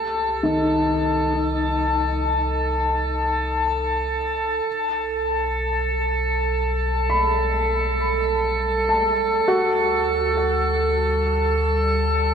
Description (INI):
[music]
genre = ambient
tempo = 50 BPM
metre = 4/4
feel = straight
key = G major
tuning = A4 = 444 Hz
[part]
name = felt-muted upright piano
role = arpeggios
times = 0.0-12.3 s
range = Eb3 to B5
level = -25 LUFS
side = left 1 dB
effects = ping-pong delay, shimmer reverb
[part]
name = warm sub bass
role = bass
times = 0.0-12.3 s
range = B1 to D2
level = -26 LUFS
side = equal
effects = none
[part]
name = drifting glass-harmonics texture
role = texture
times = 0.0-12.3 s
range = A4 to A5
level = -21 LUFS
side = right 1 dB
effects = chorus, built-in reverb, shimmer reverb
[part]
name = bowed-like drone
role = drone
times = 7.4-12.3 s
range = G3 to A4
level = -32 LUFS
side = equal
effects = built-in reverb
[sound]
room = wet cathedral reverb, RT60 4.8 s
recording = none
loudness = -19 LUFS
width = side -7 dB against mid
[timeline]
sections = 0.0-4.7 A section; 4.7-12.3 B section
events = fade-in on synth drone 4.7-12.3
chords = 0.0 Cm; 4.7 Gadd9/B; 9.5 D5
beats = 1.02 2.23 3.45 | 4.67 5.87 7.08 8.28 | 9.47 10.65 11.84